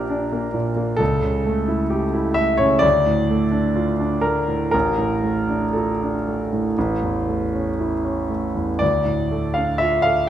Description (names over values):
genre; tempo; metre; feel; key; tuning
classical, romantic nocturne for solo piano; 58-68 BPM; 4/4; rubato; D minor; A4 = 438 Hz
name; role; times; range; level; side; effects
warm grand piano; solo; 0.0-10.3 s; A1 to F5; -18 LUFS; equal; none
room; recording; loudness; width
wet recital hall reverb, RT60 1.7 s; minimal, uncompressed stereo recording; -18 LUFS; side -10 dB against mid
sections
0.0-10.3 A section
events
none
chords
0.0 Gm/Bb; 1.0 A7/C#; 2.8 Dm; 4.7 Dm/A; 6.8 A; 8.8 Dm